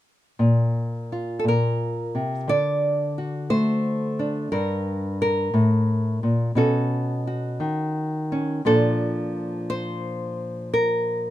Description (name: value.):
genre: solo jazz.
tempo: 58 BPM.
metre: 4/4.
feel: swing 68% on 8ths, rubato.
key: Bb major.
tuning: A4 = 439 Hz.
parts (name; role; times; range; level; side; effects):
nylon-string guitar; solo; 0.4-11.3 s; G2 to D5; -21 LUFS; equal; none.
room: light reverb.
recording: close, detailed microphones.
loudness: -21 LUFS.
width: side -13 dB against mid.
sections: 0.4-8.6 A section; 8.6-11.3 B section.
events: none.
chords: 0.4 Bb5; 2.5 D7; 4.5 Gm; 6.6 B9; 8.6 Bbmaj7.